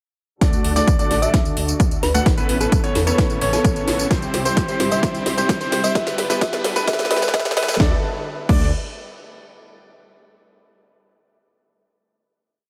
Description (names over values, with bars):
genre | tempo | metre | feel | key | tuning
EDM, festival progressive house | 130 BPM | 4/4 | straight | D major | A4 = 442 Hz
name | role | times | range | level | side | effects
dark studio string section | sustained chords | 0.4-8.0 s | C3 to B4 | -33 LUFS | equal | none
warm concert grand piano | arpeggios | 0.4-8.7 s | B4 to F#5 | -28 LUFS | equal | sidechain pumping, tape echo
dense compressed supersaw | riff | 0.4-8.7 s | G3 to F#5 | -28 LUFS | equal | vintage 12-bit sampler grit, sidechain pumping, low-pass filter, tape echo
detuned saw bass | bass | 0.4-8.7 s | G1 to E2 | -29 LUFS | equal | sidechain pumping
electronic kick drum | drums | 0.4-8.6 s | none | -21 LUFS | equal | overdrive
house drum kit | drums | 0.4-8.6 s | crash cymbal, hi-hat, snare drum, tambourine | -27 LUFS | equal | overdrive
riser | sound effects | 3.3-7.8 s | none | -37 LUFS | equal | none
thumb-piano-like synth pluck | melody | 1.2-7.7 s | A4 to E5 | -29 LUFS | equal | chorus, vintage 12-bit sampler grit, tape echo
room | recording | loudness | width
light reverb | high-pass filter | -19 LUFS | mono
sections
0.4-7.8 build; 7.8-9.6 final chord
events
build-up 0.4-7.8; drum fill 0.4-7.8; filter sweep on supersaw synth 0.4-7.8; filter sweep 0.4-7.8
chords
0.4 D; 2.3 Aadd9; 4.1 C; 6.0 Gadd9; 7.8 D